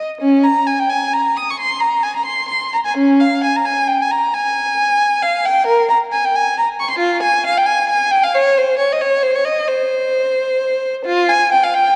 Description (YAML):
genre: classical, baroque-style suite movement for unaccompanied violin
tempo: 89 BPM (dotted quarters)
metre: 12/8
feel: rubato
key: Ab major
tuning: A4 = 440 Hz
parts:
  - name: rich violin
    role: solo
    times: 0.0-12.0 s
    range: Db4 to Eb6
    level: -16 LUFS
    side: equal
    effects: none
room: wet church reverb, RT60 2.9 s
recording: dark, warm production, vinyl crackle, nothing above 10.5 kHz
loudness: -16 LUFS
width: mono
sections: 0.0-12.0 A section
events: none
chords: none